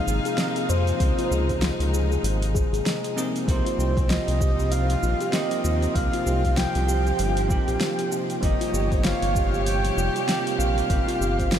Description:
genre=organic downtempo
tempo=97 BPM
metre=4/4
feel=swing 59% on 16ths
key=unclear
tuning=A4 = 440 Hz
part: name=breathy flute-like synth lead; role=melody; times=0.0-11.6 s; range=C5 to G5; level=-29 LUFS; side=right 1 dB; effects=lush chorus, tape echo
part: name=bell-like tine electric piano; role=accompaniment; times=0.0-11.6 s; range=C3 to Ab4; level=-31 LUFS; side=right 3 dB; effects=lush chorus, sidechain pumping, tape echo
part: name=warm chamber string section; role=sustained chords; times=0.0-11.6 s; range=C3 to Db5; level=-33 LUFS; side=left 2 dB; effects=sidechain pumping
part: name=round analog bass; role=bass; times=0.1-11.6 s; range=F1 to F2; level=-24 LUFS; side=equal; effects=none
part: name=deep house drum kit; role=drums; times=0.1-11.6 s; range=hi-hat, shaker, snare drum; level=-30 LUFS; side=equal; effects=overdrive
part: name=steel tongue drum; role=arpeggios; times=0.3-11.6 s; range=C4 to Eb5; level=-30 LUFS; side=left 1 dB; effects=tape echo
part: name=electronic kick drum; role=drums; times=1.0-11.5 s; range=none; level=-25 LUFS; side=equal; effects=none
room=moderate huge ambient reverb, RT60 7.9 s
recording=dreamy mix soaked in reverb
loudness=-21 LUFS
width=side -9 dB against mid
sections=0.0-11.6 A section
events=none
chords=0.0 Dbmaj9; 3.5 Cm7; 8.4 Gm7b5

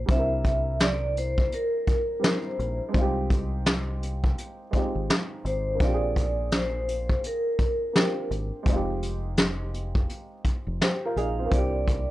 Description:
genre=lo-fi hip hop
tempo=84 BPM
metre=4/4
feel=swing 61% on 16ths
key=F dorian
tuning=A4 = 439 Hz
part: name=dark upright piano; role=accompaniment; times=0.0-12.1 s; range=G3 to C5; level=-32 LUFS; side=right 1 dB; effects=cassette tape
part: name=deep dub fingered electric bass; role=bass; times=0.0-12.1 s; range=F1 to C2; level=-30 LUFS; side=equal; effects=none
part: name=vibraphone with medium mallets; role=melody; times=0.1-12.1 s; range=Bb4 to F5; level=-29 LUFS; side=equal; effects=none
part: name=vintage brush drum kit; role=drums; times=0.1-12.1 s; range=hi-hat, kick drum, snare drum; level=-24 LUFS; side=equal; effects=vintage 12-bit sampler grit
room=little or no reverb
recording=none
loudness=-24 LUFS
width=side -16 dB against mid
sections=0.0-11.5 A section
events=none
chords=0.1 C7; 2.9 Fm7/C; 5.8 Bb7; 8.7 Fm7; 11.5 C7

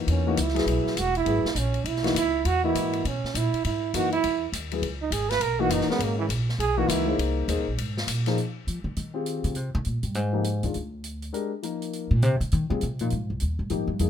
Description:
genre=modal jazz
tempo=203 BPM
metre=4/4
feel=swing 62% on 8ths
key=C# dorian, F dorian from 8.4 s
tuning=A4 = 440 Hz
part: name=warm concert grand piano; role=accompaniment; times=0.0-14.1 s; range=Eb3 to D#5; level=-28 LUFS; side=left 6 dB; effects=none
part: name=upright bass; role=bass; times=0.0-14.1 s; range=E1 to F3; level=-27 LUFS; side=equal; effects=none
part: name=clear trombone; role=second line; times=0.1-7.2 s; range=E3 to B4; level=-26 LUFS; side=right 8 dB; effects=none
part: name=open jazz drum kit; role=drums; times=0.1-14.1 s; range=hi-hat, ride cymbal, snare drum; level=-34 LUFS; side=left 3 dB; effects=none
room=light reverb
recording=minimal, uncompressed stereo recording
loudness=-24 LUFS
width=side -9 dB against mid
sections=0.0-8.4 A section; 8.4-14.1 A section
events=trombone solo 0.0-8.4; upright bass solo 8.4-14.1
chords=0.0 C#m7; 7.2 A#9sus4; 8.4 Fm9; 10.7 Absus2 (rootless); 13.1 Fm9

